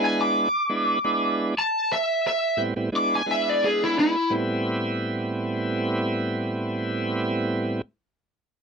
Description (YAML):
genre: blues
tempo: 87 BPM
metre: 4/4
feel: swing 55% on 16ths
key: A minor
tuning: A4 = 440 Hz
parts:
  - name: lead guitar through a small cranked amp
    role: melody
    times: 0.0-4.3 s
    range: E4 to D6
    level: -22 LUFS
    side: equal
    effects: overdrive
  - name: bright tonewheel organ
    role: accompaniment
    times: 0.0-7.8 s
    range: A2 to E4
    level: -25 LUFS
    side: right 2 dB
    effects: overdrive, slow rotary speaker
room: light reverb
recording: dry, close 1970s-style studio recording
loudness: -22 LUFS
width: side -5 dB against mid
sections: 0.0-4.3 A section; 4.3-7.1 B section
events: lead electric guitar solo 0.0-4.3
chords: 0.0 E7; 1.5 Am9; 2.9 E7; 4.3 Am9